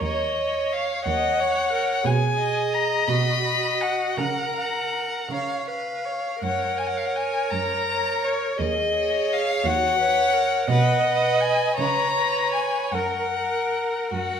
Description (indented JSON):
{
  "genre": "classical, slow romantic movement for string quartet",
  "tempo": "50-60 BPM (dotted quarters)",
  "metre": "6/8",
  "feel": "rubato",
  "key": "F# major",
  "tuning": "A4 = 440 Hz",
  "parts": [
    { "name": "rich violin", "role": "melody", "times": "0.0-14.4 s", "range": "C#5 to B5", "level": "-24 LUFS", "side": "left 5 dB", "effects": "none" },
    { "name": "rich violin", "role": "second line", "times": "0.0-14.4 s", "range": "F#4 to F#5", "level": "-28 LUFS", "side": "right 2 dB", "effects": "none" },
    { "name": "warm viola", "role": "accompaniment", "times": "0.0-14.4 s", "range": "F#4 to D#5", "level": "-28 LUFS", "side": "right 4 dB", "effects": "none" },
    { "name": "warm cello", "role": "bass", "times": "0.0-14.4 s", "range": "D#2 to C#3", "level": "-28 LUFS", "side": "right 3 dB", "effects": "none" }
  ],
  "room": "moderate recital hall reverb, RT60 1.4 s",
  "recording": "minimal, uncompressed stereo recording",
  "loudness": "-21 LUFS",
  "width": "side -7 dB against mid",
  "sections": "0.0-14.4 A section",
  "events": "none",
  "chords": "0.0 D#m7; 2.1 B; 4.2 F#/C#; 5.3 C#; 6.4 F#; 8.6 D#m7; 10.7 B; 11.8 G#madd11/C#; 12.9 F#"
}